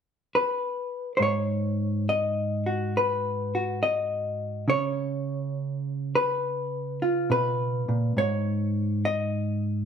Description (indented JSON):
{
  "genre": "solo jazz",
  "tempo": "69 BPM",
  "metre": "4/4",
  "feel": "swing 68% on 8ths",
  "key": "G# dorian",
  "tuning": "A4 = 440 Hz",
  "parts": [
    { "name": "hollow-body jazz guitar", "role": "solo", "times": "0.4-9.8 s", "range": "G#2 to D#5", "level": "-25 LUFS", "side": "equal", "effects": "none" }
  ],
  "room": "moderate large studio reverb, RT60 0.9 s",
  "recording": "none",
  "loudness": "-25 LUFS",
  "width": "side -7 dB against mid",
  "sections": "0.0-1.2 A section; 1.2-9.8 B section",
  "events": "none",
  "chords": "0.0 N.C.; 1.2 G#m7; 4.7 C#7; 8.2 G#5"
}